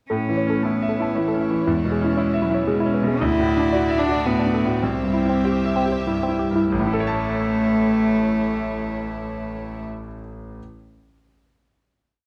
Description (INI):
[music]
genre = neoclassical piano and strings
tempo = 91-120 BPM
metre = 3/4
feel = rubato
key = A major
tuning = A4 = 440 Hz
[part]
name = warm cello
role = second line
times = 0.1-9.8 s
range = F#3 to E4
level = -26 LUFS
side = equal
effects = none
[part]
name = bright concert grand piano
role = accompaniment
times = 0.1-10.6 s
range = A1 to A5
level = -25 LUFS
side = equal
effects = none
[part]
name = warm chamber string section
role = sustained chords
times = 0.1-9.8 s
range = G3 to E5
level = -34 LUFS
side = equal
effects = none
[part]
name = woody wave-folded pluck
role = arpeggios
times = 0.1-6.7 s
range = C4 to A5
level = -29 LUFS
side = equal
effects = chorus, slapback echo
[sound]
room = light reverb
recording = close, detailed microphones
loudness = -21 LUFS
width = mono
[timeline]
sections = 0.1-6.7 theme; 6.7-10.6 final chord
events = slowing down 2.4-6.7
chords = 0.1 A; 1.7 E6; 3.2 Dadd9; 4.8 C; 6.7 A